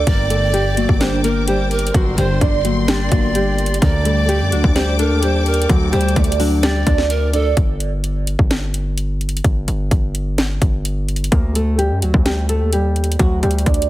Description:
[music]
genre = hip hop, trap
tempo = 128 BPM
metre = 4/4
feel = half-time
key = unclear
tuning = A4 = 440 Hz
[part]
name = nylon-string guitar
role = melody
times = 0.0-7.5, 11.3-13.9 s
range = F#3 to D5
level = -21 LUFS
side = right 1 dB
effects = tape echo
[part]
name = breathy bright pan flute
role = second line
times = 0.0-7.6 s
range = A4 to D5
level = -24 LUFS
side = right 3 dB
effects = tape echo
[part]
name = glassy wavetable pluck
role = accompaniment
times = 0.0-7.6 s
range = G2 to D5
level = -22 LUFS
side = left 2 dB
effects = chorus
[part]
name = warm symphonic string section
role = sustained chords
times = 0.0-7.5 s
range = A4 to D6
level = -27 LUFS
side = left 2 dB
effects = none
[part]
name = distorted 808-style bass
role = bass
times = 0.0-13.9 s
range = G1 to F#2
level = -19 LUFS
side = equal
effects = distortion
[part]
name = trap drum kit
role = drums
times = 0.1-13.9 s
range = hi-hat, kick drum, snare drum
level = -18 LUFS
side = equal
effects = none
[sound]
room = studio reverb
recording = heavily compressed radio sound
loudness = -14 LUFS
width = side -15 dB against mid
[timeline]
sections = 0.0-7.6 A section; 7.6-13.9 B section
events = break 7.6-11.3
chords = 0.1 Gm; 3.8 Dsus4; 7.6 N.C.; 11.3 Dsus4

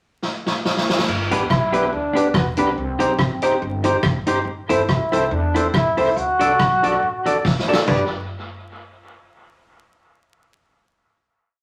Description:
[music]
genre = ska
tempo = 141 BPM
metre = 4/4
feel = swing 56% on 8ths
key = G major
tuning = A4 = 440 Hz
[part]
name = street-band drum kit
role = drums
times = 0.2-8.0 s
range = crash cymbal, hi-hat, kick drum, rim click, snare drum, toms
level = -24 LUFS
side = equal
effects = dub echo
[part]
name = upright bass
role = bass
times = 1.1-8.1 s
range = E1 to E2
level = -31 LUFS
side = equal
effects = none
[part]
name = semi-hollow electric guitar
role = accompaniment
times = 1.3-8.0 s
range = D4 to D5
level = -26 LUFS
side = equal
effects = none
[part]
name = tonewheel organ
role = stabs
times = 1.3-8.1 s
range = B3 to D5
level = -25 LUFS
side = equal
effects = slow rotary speaker
[part]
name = bright trombone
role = melody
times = 1.5-8.1 s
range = B3 to B4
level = -24 LUFS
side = equal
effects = none
[sound]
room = wet studio reverb, RT60 0.6 s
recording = vinyl crackle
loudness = -19 LUFS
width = mono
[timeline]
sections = 0.0-1.1 pickup bar; 1.1-7.9 head; 7.9-9.6 final chord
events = drum fill 0.2-1.1, 7.4-7.9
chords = 0.0 N.C.; 1.1 G; 2.8 Cm; 4.5 Am; 6.2 D; 7.9 G

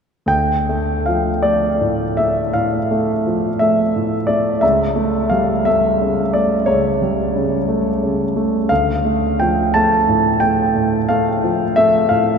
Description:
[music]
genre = classical, romantic nocturne for solo piano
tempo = 50-60 BPM (dotted quarters)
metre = 12/8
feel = rubato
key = D minor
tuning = A4 = 440 Hz
[part]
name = warm concert grand piano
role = solo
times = 0.3-12.4 s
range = C#2 to A5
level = -14 LUFS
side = equal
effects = none
[sound]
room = wet cathedral reverb, RT60 6.3 s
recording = minimal, uncompressed stereo recording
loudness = -14 LUFS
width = side -6 dB against mid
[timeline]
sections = 0.3-12.4 A section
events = none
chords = 0.3 Dm; 4.6 A7/C#; 8.7 Dm

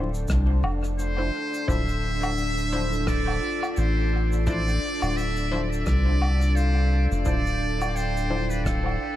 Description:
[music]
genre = ambient dub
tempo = 86 BPM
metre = 4/4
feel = swing 57% on 16ths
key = D minor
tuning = A4 = 439 Hz
[part]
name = deep dark ambient pad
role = sustained chords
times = 0.0-9.2 s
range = D4 to D5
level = -32 LUFS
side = equal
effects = chorus, built-in reverb
[part]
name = vibraphone with medium hard mallets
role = arpeggios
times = 0.0-9.2 s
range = F4 to G5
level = -36 LUFS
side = left 1 dB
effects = auto-pan, tape echo
[part]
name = filtered dub chord stab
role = stabs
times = 0.0-9.2 s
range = F3 to C5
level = -35 LUFS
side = left 2 dB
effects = chorus, dub echo
[part]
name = soft dub sub bass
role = bass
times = 0.0-9.0 s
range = D1 to C2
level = -24 LUFS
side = equal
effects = none
[part]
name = shaker, rim click and woodblock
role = drums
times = 0.1-9.0 s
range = none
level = -36 LUFS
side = left 1 dB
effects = dub echo
[part]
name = electronic kick drum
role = drums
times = 0.3-8.8 s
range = none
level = -29 LUFS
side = equal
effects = none
[part]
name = trumpet with metal mute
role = melody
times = 1.0-9.2 s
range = A4 to E5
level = -30 LUFS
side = equal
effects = dub echo
[sound]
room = studio reverb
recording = vinyl crackle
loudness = -22 LUFS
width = side -13 dB against mid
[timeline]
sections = 0.0-9.2 A section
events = none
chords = 0.0 Dm9

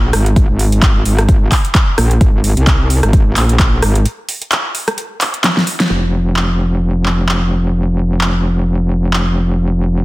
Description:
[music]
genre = bass house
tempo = 130 BPM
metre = 4/4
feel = swing 56% on 16ths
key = unclear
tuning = A4 = 437 Hz
[part]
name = metallic wobble bass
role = bass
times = 0.0-10.0 s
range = F1 to C2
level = -13 LUFS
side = equal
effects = chorus, overdrive, sidechain pumping
[part]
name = big-room dance drum kit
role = drums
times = 0.1-9.2 s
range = handclaps, hi-hat, rim click, snare drum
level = -17 LUFS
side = equal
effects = overdrive, studio reverb
[part]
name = electronic kick drum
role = drums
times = 0.4-3.7 s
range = none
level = -11 LUFS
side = equal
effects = overdrive, studio reverb
[sound]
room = little or no reverb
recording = dense, heavily limited modern master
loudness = -11 LUFS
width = side -19 dB against mid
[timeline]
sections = 0.0-5.9 A section; 5.9-10.0 B section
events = drop 0.0-5.9; break 4.1-5.9; drum fill 5.4-5.9; band accent 5.8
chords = none

